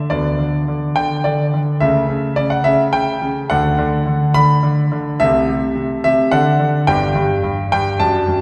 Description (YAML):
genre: classical-period piano sonatina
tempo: 106 BPM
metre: 3/4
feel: straight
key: D major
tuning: A4 = 442 Hz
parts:
  - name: clear concert grand piano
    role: solo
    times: 0.0-8.4 s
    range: G1 to B5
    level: -16 LUFS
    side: equal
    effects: none
room: wet concert hall reverb, RT60 2.3 s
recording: recorded in a church or concert hall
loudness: -16 LUFS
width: mono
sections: 0.0-8.4 A section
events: none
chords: 0.1 G/D; 1.8 A7/C#; 3.5 D; 5.2 Am/C; 6.3 D; 6.9 G5